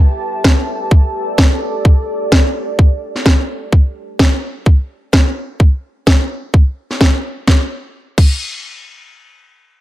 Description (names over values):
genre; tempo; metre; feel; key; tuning
bass house; 128 BPM; 4/4; swing 56% on 16ths; unclear; A4 = 439 Hz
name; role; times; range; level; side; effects
deep dark ambient pad; texture; 0.0-3.7 s; G4 to A5; -22 LUFS; equal; chorus, built-in reverb, sidechain pumping
electronic kick drum; drums; 0.4-8.3 s; none; -10 LUFS; equal; none
house drum kit; drums; 0.4-8.3 s; crash cymbal, snare drum; -16 LUFS; equal; overdrive
room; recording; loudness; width
little or no reverb; none; -12 LUFS; side -15 dB against mid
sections
0.0-7.5 A section; 7.5-9.8 B section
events
none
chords
0.0 Dsus4; 7.5 N.C.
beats
0.44 0.91 1.38 | 1.85 2.32 2.79 3.26 | 3.73 4.19 4.66 5.13 | 5.60 6.07 6.54 7.01 | 7.47 7.94